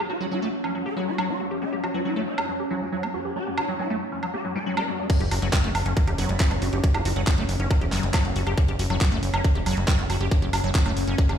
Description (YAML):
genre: psychedelic trance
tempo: 138 BPM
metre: 4/4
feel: straight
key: F# phrygian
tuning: A4 = 441 Hz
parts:
  - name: swarming rave lead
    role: melody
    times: 0.0-5.1 s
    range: F#3 to B4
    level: -31 LUFS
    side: equal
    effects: chorus, phaser, sidechain pumping, tape echo
  - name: evolving wavetable pad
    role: sustained chords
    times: 0.0-11.4 s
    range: C#4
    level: -32 LUFS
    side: equal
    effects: chorus, built-in reverb, sidechain pumping
  - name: liquid acid bass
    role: riff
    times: 0.0-11.3 s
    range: F#3 to G4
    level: -30 LUFS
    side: moving between left 6 dB and right 6 dB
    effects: chorus, auto-pan, cassette tape, sidechain pumping, dub echo
  - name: downlifter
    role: sound effects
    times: 0.0-1.6 s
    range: none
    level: -48 LUFS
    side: right 1 dB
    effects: none
  - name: garage drum kit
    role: drums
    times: 0.6-11.4 s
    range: crash cymbal, handclaps, hi-hat, woodblock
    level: -30 LUFS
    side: right 2 dB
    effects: overdrive, low-pass filter on snare, low-pass filter on hats, low-pass filter on perc, low-pass filter on toms, low-pass filter on cymbals
  - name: electronic kick drum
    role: drums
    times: 5.1-11.3 s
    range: none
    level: -20 LUFS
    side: equal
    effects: overdrive
  - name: plucky analog bass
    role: bass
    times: 5.2-11.4 s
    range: E1 to F#1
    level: -25 LUFS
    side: equal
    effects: none
  - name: vowel-sweep wobble bass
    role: second line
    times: 6.2-7.7 s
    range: B3 to E4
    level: -37 LUFS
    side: right 4 dB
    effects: wide subtle chorus, sidechain pumping, high-pass filter, digital delay
room: light reverb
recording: played on a big sound system in a bare room, stone room reverb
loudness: -22 LUFS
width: side -8 dB against mid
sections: 0.0-5.1 A section; 5.1-11.4 B section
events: drop 5.1-11.4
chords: 0.0 F#5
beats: 0.31 0.75 1.18 | 1.62 2.05 2.49 2.92 | 3.36 3.79 4.23 4.66 | 5.10 5.53 5.97 6.40 | 6.84 7.27 7.71 8.14 | 8.57 9.01 9.45 9.88 | 10.31 10.75 11.18